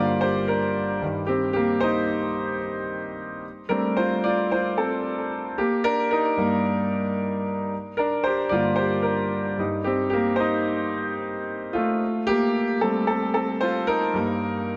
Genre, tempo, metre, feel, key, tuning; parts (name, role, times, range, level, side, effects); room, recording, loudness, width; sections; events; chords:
pop; 112 BPM; 4/4; straight; A4 = 443 Hz
clear concert grand piano; solo; 0.0-14.8 s; G2 to D5; -24 LUFS; equal; delay
moderate plate reverb, RT60 2.8 s; -24 LUFS; mono
0.0-14.8 A section
grand piano solo 0.0-14.8
0.0 Gm; 1.0 Cm/G; 3.4 F/G; 5.6 Eb; 7.7 Gm; 9.6 Cm/G; 14.2 Eb/G